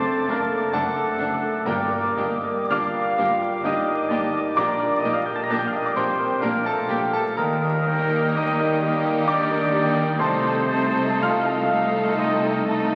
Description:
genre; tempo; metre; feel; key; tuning
classical, romantic movement for piano and orchestra; 63 BPM; 3/4; uneven beats, rubato; G minor; A4 = 441 Hz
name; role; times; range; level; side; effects
clear concert grand piano; melody; 0.0-12.9 s; C2 to Bb6; -27 LUFS; equal; none
breathy clarinet; second line; 0.0-12.9 s; G4 to Bb5; -33 LUFS; equal; none
silver concert flute; second line; 0.0-12.9 s; D6 to Eb6; -36 LUFS; equal; none
warm oboe; second line; 0.0-12.9 s; D5 to Bb5; -33 LUFS; equal; none
mellow bassoon; accompaniment; 0.0-12.9 s; G3 to A3; -35 LUFS; equal; none
dark French horn section; sustained chords; 0.0-12.9 s; G3 to Bb4; -31 LUFS; equal; none
warm trumpet; stabs; 0.0-12.9 s; G4 to Bb5; -34 LUFS; equal; none
rich symphonic violin section; melody; 0.3-12.9 s; D4 to A4; -38 LUFS; equal; none
rich symphonic violin section; second line; 0.3-12.9 s; D4 to Eb4; -37 LUFS; equal; none
rich symphonic viola section; accompaniment; 0.3-12.9 s; A3 to Bb3; -34 LUFS; equal; none
clear symphonic double bass section; bass; 0.3-12.9 s; F#1 to Eb2; -38 LUFS; equal; none
dark tuba; bass; 0.3-12.9 s; F#1 to Eb2; -37 LUFS; equal; none
warm symphonic cello section; bass; 0.3-12.9 s; F#2 to Eb3; -38 LUFS; equal; none
timpani; percussion; 1.7-3.1 s; G2; -40 LUFS; equal; none
room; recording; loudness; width
wet concert hall reverb, RT60 2.6 s; very old 78 rpm record, vinyl crackle; -22 LUFS; mono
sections
0.0-12.9 A section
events
none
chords
0.0 D7/F#; 1.7 Gm; 4.6 Gm/Bb; 7.4 Eb; 10.2 Adim/C

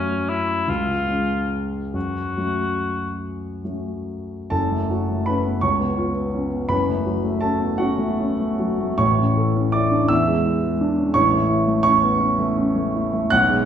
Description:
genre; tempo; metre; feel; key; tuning
classical, romantic duo for cor anglais and grand piano; 44-58 BPM (dotted quarters); 6/8; rubato; F# minor; A4 = 440 Hz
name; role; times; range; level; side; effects
warm cor anglais; melody; 0.0-3.2 s; C#4 to F#4; -25 LUFS; left 3 dB; none
dark baby grand piano; accompaniment; 0.0-13.7 s; F#1 to F#6; -19 LUFS; equal; none
room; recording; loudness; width
wet recital hall reverb, RT60 1.4 s; heard from further back in the room; -19 LUFS; side -8 dB against mid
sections
0.0-4.5 A section; 4.5-13.7 B section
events
none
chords
0.0 F#m; 0.7 C#; 1.9 F#m; 5.6 C#7; 6.7 F#m; 9.0 A; 10.1 E7; 11.2 A

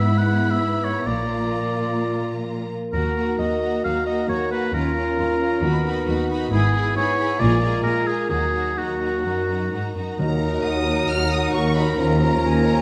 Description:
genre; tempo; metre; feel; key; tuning
classical, dramatic, fast romantic movement for symphony orchestra; 132 BPM; 4/4; uneven beats, rubato; Eb minor; A4 = 438 Hz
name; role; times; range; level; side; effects
warm symphonic violin section; melody; 0.0-12.8 s; Bb5 to F6; -35 LUFS; equal; none
clear oboe; second line; 0.0-12.8 s; Gb4 to Gb5; -28 LUFS; equal; none
warm symphonic violin section; second line; 0.0-12.8 s; E4 to Bb5; -35 LUFS; equal; none
warm symphonic viola section; accompaniment; 0.0-12.8 s; Bb3 to Gb4; -33 LUFS; equal; none
warm French horn section; sustained chords; 0.0-12.1 s; F3 to F#4; -30 LUFS; equal; none
concert harp; arpeggios; 0.0-12.8 s; G#2 to Eb5; -33 LUFS; equal; none
warm symphonic cello section; bass; 0.0-12.8 s; Eb2 to Bb2; -28 LUFS; equal; none
warm symphonic double bass section; bass; 1.1-12.8 s; G#1 to Eb2; -28 LUFS; equal; none
mellow clarinet; second line; 10.2-12.8 s; Db4 to Eb4; -32 LUFS; equal; none
small flute group; second line; 10.2-12.8 s; Eb5 to Bb5; -34 LUFS; equal; none
mellow bassoon; accompaniment; 10.2-12.8 s; F3 to Gb3; -30 LUFS; equal; none
timpani; percussion; 10.2-10.8 s; Eb3; -31 LUFS; equal; none
room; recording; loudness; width
wet recital hall reverb, RT60 1.6 s; none; -22 LUFS; mono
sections
0.0-10.2 A section; 10.2-12.8 A section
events
none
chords
0.0 E/G#; 1.1 Bb; 2.9 Ebm; 4.7 Bbm/Eb; 5.6 Bmaj7/D#; 6.5 E/G#; 7.4 Bb7; 8.3 Ebm; 12.0 Bbm/Eb

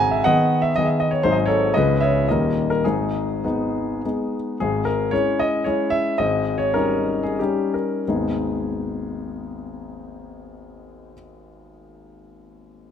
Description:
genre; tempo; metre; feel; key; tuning
classical, romantic triple-time dance for piano with dotted rhythms; 83-124 BPM; 3/4; rubato; G# minor; A4 = 444 Hz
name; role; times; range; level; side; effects
clear grand piano; solo; 0.0-12.9 s; C#1 to A#5; -19 LUFS; left 1 dB; none
room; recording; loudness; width
moderate scoring stage reverb, RT60 1.6 s; close, detailed microphones; -19 LUFS; side -8 dB against mid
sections
0.0-4.6 A section; 4.6-8.1 B section; 8.1-11.8 C section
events
slowing down 3.7-8.1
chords
0.0 G#m; 1.2 G#5; 1.7 C#m; 2.3 D#; 2.8 G#m; 4.6 C#m/G#; 6.2 D#7/G#; 8.1 G#m

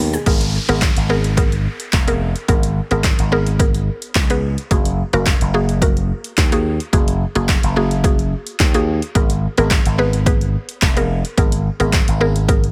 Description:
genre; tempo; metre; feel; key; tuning
dance-pop; 108 BPM; 4/4; straight; G# dorian; A4 = 437 Hz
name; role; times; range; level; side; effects
slap bass with an envelope filter; bass; 0.0-12.7 s; E#1 to D#2; -21 LUFS; equal; sidechain pumping
punchy analog drum machine; drums; 0.1-12.7 s; handclaps, hi-hat, kick drum, shaker; -20 LUFS; equal; overdrive
mallet-like synth pluck; accompaniment; 0.3-12.7 s; A#3 to B4; -24 LUFS; equal; chorus, sidechain pumping
downlifter; sound effects; 0.3-4.7 s; none; -32 LUFS; equal; none
room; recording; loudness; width
light reverb; none; -17 LUFS; mono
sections
0.3-12.7 A section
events
none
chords
0.3 G#madd9; 4.7 F#add9; 9.2 G#madd9

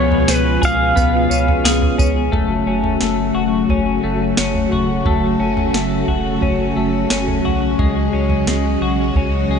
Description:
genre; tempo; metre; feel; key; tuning
dream pop; 88 BPM; 4/4; straight; F# minor; A4 = 440 Hz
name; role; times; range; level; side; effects
pedal steel guitar; melody; 0.0-2.0 s; C#5 to E#5; -19 LUFS; right 1 dB; ping-pong delay
string machine, violins; sustained chords; 0.0-9.6 s; B2 to F#4; -20 LUFS; right 1 dB; ensemble chorus
twelve-string electric guitar; arpeggios; 0.0-9.6 s; E#3 to G#4; -19 LUFS; left 5 dB; analog chorus, ping-pong delay
warm sub bass; bass; 0.0-9.6 s; E1 to C#2; -22 LUFS; right 1 dB; none
soft vintage rhythm box; drums; 0.1-9.3 s; kick drum, snare drum, tambourine, toms; -20 LUFS; right 2 dB; none
room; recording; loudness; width
moderate lush hall reverb, RT60 3.0 s; nothing above 10.5 kHz; -14 LUFS; side -6 dB against mid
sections
0.0-2.3 A section; 2.3-9.6 B section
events
none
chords
0.0 C#7; 2.3 F#m; 7.8 C#sus4

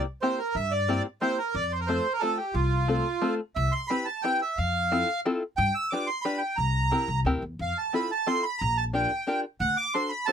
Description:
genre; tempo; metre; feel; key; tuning
musette waltz; 179 BPM; 3/4; straight; F major, C major from 3.6 s; A4 = 439 Hz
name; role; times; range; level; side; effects
bandoneon; melody; 0.0-10.3 s; F4 to E6; -27 LUFS; right 2 dB; none
open-back banjo; accompaniment; 0.0-10.3 s; A3 to C5; -28 LUFS; left 3 dB; none
upright bass; bass; 0.6-9.7 s; Bb1 to G2; -28 LUFS; left 1 dB; none
room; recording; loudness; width
little or no reverb; none; -25 LUFS; side -8 dB against mid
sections
0.0-3.6 A section; 3.6-10.3 B section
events
none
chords
0.0 C7; 1.6 F; 3.6 Cmaj7; 4.6 Fmaj7; 5.6 G7; 6.6 C7; 7.6 Fmaj7; 8.6 Bb6; 9.6 D7

